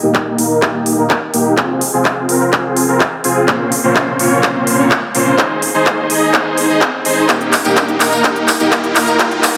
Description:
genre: EDM, festival progressive house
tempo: 126 BPM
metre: 4/4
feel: straight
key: unclear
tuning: A4 = 442 Hz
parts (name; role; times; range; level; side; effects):
- dense compressed supersaw; riff; 0.0-9.6 s; Bb3 to Eb5; -16 LUFS; equal; sidechain pumping, low-pass filter, diffuse ambient delay
- riser; sound effects; 3.1-9.6 s; none; -29 LUFS; equal; none
- big-room dance drum kit; drums; 0.1-9.6 s; handclaps, hi-hat, tambourine; -18 LUFS; equal; overdrive, high-pass filter on hats, studio reverb, high-pass filter on snare, high-pass filter on perc
- electronic kick drum; drums; 0.1-9.3 s; none; -23 LUFS; equal; high-pass filter on kick, studio reverb, high-pass filter on room
room: wet plate reverb, RT60 1.2 s, digital ambience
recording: dreamy mix soaked in reverb, high-pass filter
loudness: -13 LUFS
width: mono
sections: 0.0-9.6 A section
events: build-up 0.0-9.6; drum fill 0.0-9.6; filter sweep on supersaw synth 0.0-9.6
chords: 0.0 Eb; 1.6 Fm; 3.5 Bbmadd9; 5.4 Ab; 7.3 Eb/Bb

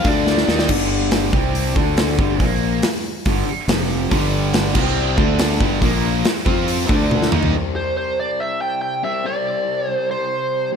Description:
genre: hard rock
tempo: 140 BPM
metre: 4/4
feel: straight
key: unclear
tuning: A4 = 441 Hz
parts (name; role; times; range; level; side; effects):
- smooth overdriven lead guitar; melody; 0.0-0.7, 7.8-10.7 s; C5 to G5; -22 LUFS; right 3 dB; none
- distorted electric guitar; riff; 0.0-0.7, 4.1-7.5 s; G2 to F4; -25 LUFS; right 1 dB; overdrive
- overdriven semi-hollow guitar; riff; 0.0-10.8 s; F2 to F4; -24 LUFS; left 12 dB; slapback echo
- tight distorted guitar; riff; 0.0-7.5 s; F2 to F4; -25 LUFS; right 12 dB; distortion, slapback echo
- modern bright fingered electric bass; bass; 0.0-7.5 s; F1 to F2; -22 LUFS; equal; none
- big rock drum kit; drums; 0.0-7.5 s; crash cymbal, hi-hat, kick drum, snare drum, toms; -20 LUFS; equal; none
room: light reverb, small room ambience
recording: none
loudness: -16 LUFS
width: side -6 dB against mid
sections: 0.7-7.5 A section; 7.5-10.8 B section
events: drum fill 0.3-0.7, 7.1-7.5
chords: 0.1 D5; 0.5 Bbadd11/Eb; 0.7 G5; 1.3 C5; 1.8 D5; 2.2 G5; 2.4 Bb5; 3.3 G5; 3.7 F5; 4.1 G5; 4.8 C5; 5.2 D5; 5.6 G5; 5.8 Bb5; 6.5 F5; 6.9 D5; 7.3 Eb5; 7.5 C5

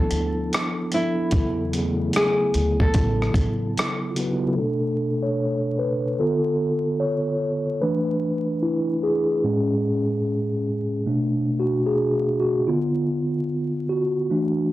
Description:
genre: lo-fi hip hop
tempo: 74 BPM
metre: 4/4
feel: swing 61% on 16ths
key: unclear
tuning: A4 = 441 Hz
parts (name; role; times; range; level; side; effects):
- nylon-string guitar; melody; 0.0-4.0 s; E4 to A4; -26 LUFS; equal; low-pass filter
- mellow tine electric piano; accompaniment; 0.0-14.7 s; A2 to C#5; -22 LUFS; equal; medium stereo tremolo, cassette tape, low-pass filter
- upright bass; bass; 0.0-3.7 s; A1 to E2; -26 LUFS; equal; transformer saturation
- dusty soul sampler-style drum kit; drums; 0.1-4.4 s; hi-hat, kick drum, rim click; -23 LUFS; equal; none
room: moderate studio reverb, RT60 0.6 s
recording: dry, gritty hardware recording, vinyl crackle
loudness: -20 LUFS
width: side -15 dB against mid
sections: 0.0-4.6 A section; 4.6-14.7 B section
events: tine electric piano solo 4.6-14.7; filter sweep on tine electric piano 4.6-14.7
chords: 0.0 Dm6; 1.3 E7sus4; 2.9 Aadd9; 4.6 Bm7; 6.2 Dm6; 7.8 E7sus4; 9.4 Amaj7; 11.1 Bm7; 12.7 Dm6

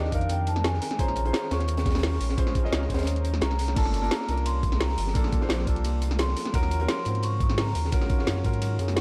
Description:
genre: liquid drum and bass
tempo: 173 BPM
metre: 4/4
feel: straight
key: unclear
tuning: A4 = 440 Hz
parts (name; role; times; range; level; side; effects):
- vibraphone with medium mallets; melody; 0.0-9.0 s; Eb5 to Db6; -36 LUFS; equal; delay
- dark concert grand piano; accompaniment; 0.0-9.0 s; Bb3 to Eb5; -36 LUFS; equal; digital delay
- shimmering ambient pad; sustained chords; 0.0-9.0 s; Db3 to Bb4; -40 LUFS; equal; chorus, built-in reverb, sidechain pumping
- warm sub bass; bass; 0.0-9.0 s; G1 to Ab2; -29 LUFS; equal; none
- crunchy breakbeat drum kit; drums; 0.0-9.0 s; hi-hat, snare drum; -37 LUFS; equal; high-pass filter on hats, high-pass filter on snare, high-pass filter on room
- drum and bass drum kit; drums; 0.1-9.0 s; crash cymbal, hi-hat, ride cymbal, snare drum; -34 LUFS; equal; none
- electronic kick drum; drums; 0.1-8.5 s; none; -29 LUFS; equal; none
room: studio reverb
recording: none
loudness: -26 LUFS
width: mono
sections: 0.0-9.0 A section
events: none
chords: 0.0 Cm7; 0.8 Bbm7; 3.8 Gm7; 6.5 Ebm7

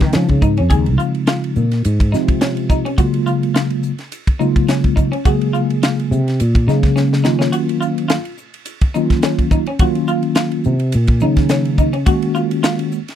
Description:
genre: electric jazz fusion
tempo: 106 BPM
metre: 4/4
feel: swing 55% on 16ths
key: unclear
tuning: A4 = 440 Hz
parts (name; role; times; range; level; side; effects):
- mellow tine electric piano; accompaniment; 0.0-13.0 s; C3 to Ab4; -18 LUFS; equal; medium stereo tremolo, wide subtle chorus
- clean electric guitar; stabs; 0.0-12.9 s; Db4 to Ab4; -23 LUFS; equal; wide subtle chorus
- sustaining fretless electric bass; bass; 0.0-12.0 s; C2 to F3; -16 LUFS; equal; lush chorus
- crisp fusion drum kit; drums; 0.0-13.2 s; hi-hat, kick drum, ride cymbal, snare drum; -17 LUFS; equal; none
room: little or no reverb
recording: dry, close 1970s-style studio recording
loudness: -14 LUFS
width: side -10 dB against mid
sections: 0.0-13.2 A section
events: fretless electric bass solo 0.0-13.2; drum fill 7.0-7.5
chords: 0.0 Dbmaj9; 3.0 Gbmaj7; 7.2 Ebm7; 12.1 Ab7sus4

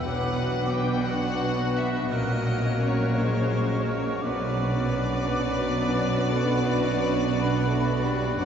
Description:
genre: classical, slow romantic movement for symphony orchestra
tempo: 58 BPM (dotted quarters)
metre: 12/8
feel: rubato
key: unclear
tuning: A4 = 441 Hz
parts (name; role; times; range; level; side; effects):
- rich chamber violin section; melody; 0.0-8.4 s; C5 to G5; -33 LUFS; left 4 dB; none
- rich chamber violin section; second line; 0.0-8.4 s; F#4 to D5; -35 LUFS; left 2 dB; none
- mellow bassoon; accompaniment; 0.0-8.4 s; D3 to B3; -34 LUFS; right 1 dB; none
- clear trombone section; sustained chords; 0.0-8.4 s; F#2 to A3; -36 LUFS; right 3 dB; none
- warm French horn section; sustained chords; 0.0-8.4 s; C#4 to C5; -34 LUFS; left 1 dB; none
- rich studio cello section; bass; 0.0-8.4 s; F#2 to B2; -30 LUFS; right 2 dB; none
- bright oboe; second line; 0.1-8.4 s; F#4 to B4; -37 LUFS; equal; none
- hollow small flute group; second line; 0.1-8.4 s; B5 to F#6; -35 LUFS; right 1 dB; none
- rich studio viola section; accompaniment; 0.1-8.4 s; F#3 to D4; -31 LUFS; right 1 dB; none
- clear chamber double bass section; bass; 0.1-8.4 s; F#1 to B1; -29 LUFS; equal; none
room: wet cathedral reverb, RT60 6.0 s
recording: dark, warm production, nothing above 7.9 kHz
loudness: -23 LUFS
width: side -8 dB against mid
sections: 0.0-8.4 A section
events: none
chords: 0.0 Bm; 2.1 F#/A#; 4.2 Bm

